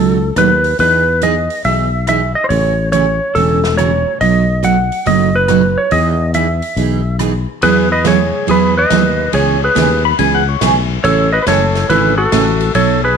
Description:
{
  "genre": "country, western swing",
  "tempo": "140 BPM",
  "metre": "4/4",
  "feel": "swing 66% on 8ths",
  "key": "E major",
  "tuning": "A4 = 441 Hz",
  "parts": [
    { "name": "clean lap steel guitar", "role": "melody", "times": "0.0-13.2 s", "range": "E4 to F#5", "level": "-14 LUFS", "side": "equal", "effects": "none" },
    { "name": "picked steel-string acoustic guitar", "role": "accompaniment", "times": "0.0-13.0 s", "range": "B2 to A4", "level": "-17 LUFS", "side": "right 10 dB", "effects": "none" },
    { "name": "sustaining fretless electric bass", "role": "bass", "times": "0.0-13.2 s", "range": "E1 to E2", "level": "-17 LUFS", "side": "left 3 dB", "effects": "none" },
    { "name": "swinging big-band drum kit", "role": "drums", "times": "0.4-12.9 s", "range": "hi-hat, ride cymbal, rim click, snare drum", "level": "-24 LUFS", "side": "left 4 dB", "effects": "none" },
    { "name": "pedal steel guitar", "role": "second line", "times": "10.1-10.7 s", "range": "C#5 to B5", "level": "-16 LUFS", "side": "left 11 dB", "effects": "none" }
  ],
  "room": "moderate plate reverb, RT60 1.2 s, small room reverb",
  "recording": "1960s-style stereo with parts hard left and right",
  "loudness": "-11 LUFS",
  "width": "side -6 dB against mid",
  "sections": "0.0-7.6 A section; 7.6-13.2 B section",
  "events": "none",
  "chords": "0.0 B7; 0.8 Emaj7; 2.5 A6; 4.2 B7; 5.9 Emaj7; 7.6 Eadd9; 9.3 C#m7; 11.0 A"
}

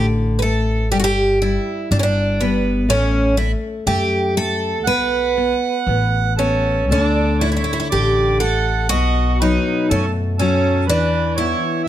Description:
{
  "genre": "fado-style ballad",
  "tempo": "60 BPM",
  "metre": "2/4",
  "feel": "rubato",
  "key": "D major",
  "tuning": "A4 = 440 Hz",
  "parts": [
    { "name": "picked twelve-string acoustic guitar", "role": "melody", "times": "0.0-11.9 s", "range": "B3 to B4", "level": "-19 LUFS", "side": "right 1 dB", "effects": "none" },
    { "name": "nylon-string guitar", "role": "accompaniment", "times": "0.0-11.9 s", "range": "B2 to B3", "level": "-24 LUFS", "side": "left 4 dB", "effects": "none" },
    { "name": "upright bass", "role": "bass", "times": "0.0-11.5 s", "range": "G1 to F#2", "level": "-20 LUFS", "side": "equal", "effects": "none" },
    { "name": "accordion", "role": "second line", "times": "4.8-11.9 s", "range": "A4 to F#5", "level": "-23 LUFS", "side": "right 7 dB", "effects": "none" }
  ],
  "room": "light reverb",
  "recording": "close, detailed microphones",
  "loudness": "-15 LUFS",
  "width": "side -12 dB against mid",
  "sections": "0.0-11.9 A section",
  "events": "none",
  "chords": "0.0 D5; 0.9 G6; 2.9 A6; 4.9 B5; 6.9 D5; 8.9 B5; 10.9 E5"
}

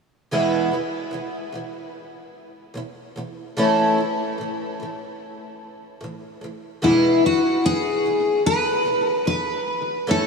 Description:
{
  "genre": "pop",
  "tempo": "74 BPM",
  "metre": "4/4",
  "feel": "swing 60% on 16ths",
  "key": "E major",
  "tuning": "A4 = 440 Hz",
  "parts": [
    { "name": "picked twelve-string acoustic guitar", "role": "accompaniment", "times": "0.3-10.3 s", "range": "E2 to E4", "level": "-24 LUFS", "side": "right 1 dB", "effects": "lush chorus" },
    { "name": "picked steel-string acoustic guitar", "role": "melody", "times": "6.8-10.3 s", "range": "E4 to B4", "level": "-18 LUFS", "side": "left 2 dB", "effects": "analog chorus, tape echo" }
  ],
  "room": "wet huge ambient reverb, RT60 5.1 s",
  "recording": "dreamy mix soaked in reverb, studio ambience",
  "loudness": "-19 LUFS",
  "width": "side -4 dB against mid",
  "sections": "0.3-6.8 A section; 6.8-10.3 B section",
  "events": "none",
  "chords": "0.3 E; 3.6 A; 6.8 E"
}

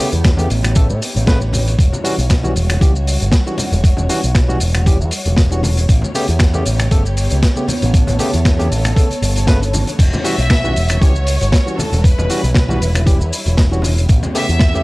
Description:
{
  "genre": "nu-disco, nu disco",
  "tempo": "117 BPM",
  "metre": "4/4",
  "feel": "swing 54% on 16ths",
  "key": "E dorian",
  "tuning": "A4 = 440 Hz",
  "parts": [
    { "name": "barky tine electric piano", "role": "accompaniment", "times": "0.0-14.8 s", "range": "C#3 to B4", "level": "-23 LUFS", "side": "equal", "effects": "none" },
    { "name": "dark studio string section", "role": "sustained chords", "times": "0.0-14.8 s", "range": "G3 to C#5", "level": "-26 LUFS", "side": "equal", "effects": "sidechain pumping" },
    { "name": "raw garage drum kit", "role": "drums", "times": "0.0-14.8 s", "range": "crash cymbal, finger snaps, hi-hat, shaker, snare drum", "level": "-22 LUFS", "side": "equal", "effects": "none" },
    { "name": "picked electric bass with an envelope filter", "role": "bass", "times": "0.1-14.8 s", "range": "E1 to A2", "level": "-16 LUFS", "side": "equal", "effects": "tube saturation" },
    { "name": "maracas, congas and bongos", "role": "percussion", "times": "0.1-14.8 s", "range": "none", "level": "-26 LUFS", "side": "left 1 dB", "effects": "none" },
    { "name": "electronic kick drum", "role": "drums", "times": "0.2-14.7 s", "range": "none", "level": "-12 LUFS", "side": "equal", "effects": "overdrive" },
    { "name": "warm studio violin section", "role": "melody", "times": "10.2-14.8 s", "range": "A4 to E5", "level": "-22 LUFS", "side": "equal", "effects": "none" }
  ],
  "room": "little or no reverb",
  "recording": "cassette tape",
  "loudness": "-12 LUFS",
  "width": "side -22 dB against mid",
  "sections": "0.0-14.8 A section",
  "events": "none",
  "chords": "0.0 A9; 1.8 Em69; 5.9 A9; 10.0 Em69; 14.1 A9"
}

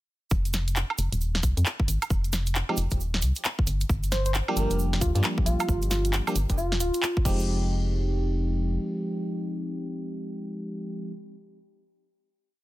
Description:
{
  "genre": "UK garage, two-step garage",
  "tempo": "134 BPM",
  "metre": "4/4",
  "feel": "swing 62% on 16ths",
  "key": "F dorian",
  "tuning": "A4 = 440 Hz",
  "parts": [
    { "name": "organ-like FM bass", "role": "bass", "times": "0.3-8.8 s", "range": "D1 to G2", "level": "-26 LUFS", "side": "equal", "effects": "sidechain pumping" },
    { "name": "electronic kick drum", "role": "drums", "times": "0.3-7.4 s", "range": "none", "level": "-26 LUFS", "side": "equal", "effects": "none" },
    { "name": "cabasa", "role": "percussion", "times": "0.3-7.5 s", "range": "none", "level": "-39 LUFS", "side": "right 6 dB", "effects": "none" },
    { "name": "garage drum kit", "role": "drums", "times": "0.5-7.4 s", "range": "crash cymbal, handclaps, hi-hat, snare drum, woodblock", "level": "-30 LUFS", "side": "equal", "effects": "none" },
    { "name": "FM electric piano", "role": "stabs", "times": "2.7-11.1 s", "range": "F3 to G4", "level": "-31 LUFS", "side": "equal", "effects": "chorus, dub echo" },
    { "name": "soft struck synth lead", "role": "melody", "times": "4.1-7.2 s", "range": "F4 to C5", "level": "-32 LUFS", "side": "equal", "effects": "chorus, dub echo" }
  ],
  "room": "light reverb",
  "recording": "dense, heavily limited modern master",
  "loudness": "-24 LUFS",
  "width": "side -16 dB against mid",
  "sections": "0.3-7.5 groove; 7.5-11.1 final hit",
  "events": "none",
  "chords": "0.3 F7(no3); 3.7 Gm7; 7.3 Fm9"
}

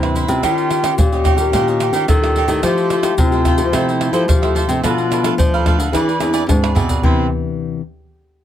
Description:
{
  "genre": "samba and choro",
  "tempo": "109 BPM",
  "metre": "4/4",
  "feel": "straight",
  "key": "C major",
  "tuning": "A4 = 435 Hz",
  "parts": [
    { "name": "mellow clarinet", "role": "second line", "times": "0.0-7.3 s", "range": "C4 to A4", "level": "-20 LUFS", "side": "left 4 dB", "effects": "none" },
    { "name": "cavaquinho", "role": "accompaniment", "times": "0.0-7.3 s", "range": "D4 to F5", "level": "-22 LUFS", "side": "right 7 dB", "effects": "none" },
    { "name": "nylon-string guitar", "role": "accompaniment", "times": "0.0-7.8 s", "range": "G2 to G#4", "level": "-23 LUFS", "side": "left 6 dB", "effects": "none" },
    { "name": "nylon-string guitar", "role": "bass", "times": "0.0-7.3 s", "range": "E2 to F3", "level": "-20 LUFS", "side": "equal", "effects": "none" },
    { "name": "tube shaker, pandeiro, tamborim and surdo", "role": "percussion", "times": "0.0-7.2 s", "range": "none", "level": "-18 LUFS", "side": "equal", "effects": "none" }
  ],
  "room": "light reverb",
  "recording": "close, detailed microphones",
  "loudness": "-14 LUFS",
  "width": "side -10 dB against mid",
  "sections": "0.0-7.0 A section; 7.0-8.4 B section",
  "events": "drum fill 6.6-7.0",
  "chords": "0.4 Eb9; 2.6 Fmaj9; 4.8 Bm7b5; 5.9 E7b13; 7.0 Cmaj9"
}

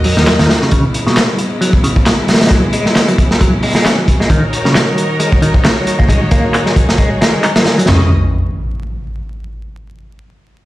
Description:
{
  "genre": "breakbeat, breaks",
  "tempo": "134 BPM",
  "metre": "4/4",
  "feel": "swing 55% on 16ths",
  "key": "unclear",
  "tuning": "A4 = 439 Hz",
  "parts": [
    { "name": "rich studio string section", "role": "sustained chords", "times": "0.0-8.1 s", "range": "C#3 to D#5", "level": "-18 LUFS", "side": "equal", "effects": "sidechain pumping" },
    { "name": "dark detuned saw bass", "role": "bass", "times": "0.0-0.5, 7.9-8.1 s", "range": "C#2 to D#2", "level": "-14 LUFS", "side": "equal", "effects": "none" },
    { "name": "crunchy breakbeat drum kit", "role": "drums", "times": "0.0-8.0 s", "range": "hi-hat, kick drum, ride cymbal, snare drum, toms", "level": "-12 LUFS", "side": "equal", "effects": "none" },
    { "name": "semi-hollow electric guitar", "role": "riff", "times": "0.1-8.1 s", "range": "B2 to D#4", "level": "-17 LUFS", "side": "equal", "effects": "tube saturation, tremolo, low-pass filter, tape echo" },
    { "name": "electronic handclaps", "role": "drums", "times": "0.3-7.5 s", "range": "none", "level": "-19 LUFS", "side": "equal", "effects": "overdrive, low-pass filter on snare" },
    { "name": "impact", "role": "sound effects", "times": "8.0-9.7 s", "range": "none", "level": "-21 LUFS", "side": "equal", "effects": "none" }
  ],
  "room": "moderate small room ambience, RT60 0.5 s",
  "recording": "played on a big sound system in a bare room, stone room reverb, vinyl crackle",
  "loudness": "-10 LUFS",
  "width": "side -16 dB against mid",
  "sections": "0.0-7.9 A section; 7.9-9.7 B section",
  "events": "filter sweep on drum 0.0-7.9; filter sweep on clean electric guitar 0.0-7.9",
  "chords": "0.0 D#m7; 0.7 C#m7; 4.3 D#m7; 7.9 N.C."
}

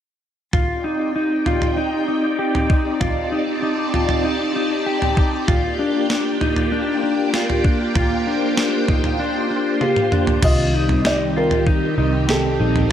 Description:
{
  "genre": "dream pop",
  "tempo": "97 BPM",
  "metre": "4/4",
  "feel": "straight",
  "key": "C dorian",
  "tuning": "A4 = 441 Hz",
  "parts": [
    { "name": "phased string machine", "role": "sustained chords", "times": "0.5-12.9 s", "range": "Eb3 to A5", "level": "-22 LUFS", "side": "right 1 dB", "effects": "ensemble chorus, phaser" },
    { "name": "mellow electric guitar", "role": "arpeggios", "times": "0.5-12.9 s", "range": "D4 to G4", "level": "-22 LUFS", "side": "left 3 dB", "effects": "wide subtle chorus, tape echo" },
    { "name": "crisp 8-bit digital drum machine", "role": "drums", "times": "0.5-12.9 s", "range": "crash cymbal, kick drum, snare drum, toms", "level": "-20 LUFS", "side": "right 1 dB", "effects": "none" },
    { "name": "felt-muted upright piano", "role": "melody", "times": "9.8-12.9 s", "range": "G4 to Eb5", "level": "-22 LUFS", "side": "right 1 dB", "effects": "tape echo" },
    { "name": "vintage muted picked electric bass", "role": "bass", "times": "10.4-12.9 s", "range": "Bb1 to C2", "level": "-21 LUFS", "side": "equal", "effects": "none" }
  ],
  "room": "moderate lush hall reverb, RT60 1.9 s",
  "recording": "none",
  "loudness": "-17 LUFS",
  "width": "side -10 dB against mid",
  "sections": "0.5-10.4 A section; 10.4-12.9 B section",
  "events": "drum fill 9.8-10.4",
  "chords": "0.5 Cmadd9; 5.5 Gm7/Bb; 10.4 Cm"
}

